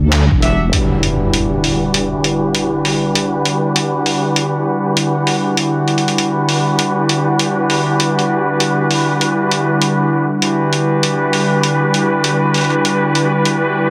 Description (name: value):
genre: glitch hop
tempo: 99 BPM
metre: 4/4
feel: swing 63% on 16ths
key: E minor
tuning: A4 = 440 Hz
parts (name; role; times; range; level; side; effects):
- warm analog pad; sustained chords; 0.0-13.9 s; D3 to F#5; -19 LUFS; equal; lush chorus, sidechain pumping
- wobble bass; bass; 0.0-0.7 s; E1 to D2; -15 LUFS; equal; chorus
- boom bap sampler-style drum kit; drums; 0.1-13.6 s; handclaps, hi-hat; -21 LUFS; equal; none
- clear horn section; stabs; 0.4-13.9 s; E3 to E5; -20 LUFS; equal; sidechain pumping, low-pass filter, delay
- impact; sound effects; 0.7-3.2 s; none; -23 LUFS; equal; none
room: moderate digital room reverb, RT60 1.2 s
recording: heavily compressed radio sound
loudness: -15 LUFS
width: mono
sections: 0.7-13.9 A section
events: band accent 0.1-0.4; impact 0.7-3.2; filter sweep on horn section 0.7-13.9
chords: 0.0 Em9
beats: 0.12 | 0.73 1.34 1.94 2.55 | 3.15 3.76 4.37 4.97 | 5.58 6.18 6.79 7.40 | 8.00 8.61 9.21 9.82 | 10.43 11.03 11.64 12.25 | 12.85 13.46